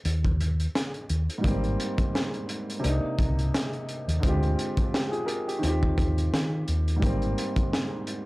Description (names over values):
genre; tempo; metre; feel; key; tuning
hip hop, boom-bap hip-hop; 86 BPM; 4/4; swing 55% on 16ths; unclear; A4 = 444 Hz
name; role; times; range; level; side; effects
hollow-body short-scale fingered electric bass; bass; 0.1-7.3 s; Ab1 to Eb3; -26 LUFS; equal; tube saturation
crunchy breakbeat drum kit; drums; 0.1-8.2 s; hi-hat, kick drum, snare drum; -28 LUFS; equal; none
warm upright piano; accompaniment; 1.4-8.3 s; Ab2 to Bb4; -29 LUFS; equal; high-pass filter, low-pass filter
room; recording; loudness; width
little or no reverb; dry, gritty hardware recording, transformer saturation; -24 LUFS; side -21 dB against mid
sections
0.0-8.3 A section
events
break 0.0-1.4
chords
0.0 N.C.; 1.4 Abmaj9; 2.8 Cm9; 4.2 Bb13/D; 5.6 Eb69; 7.0 Abmaj9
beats
0.05 0.74 | 1.44 2.14 2.84 3.54 | 4.23 4.93 5.63 6.33 | 7.02 7.72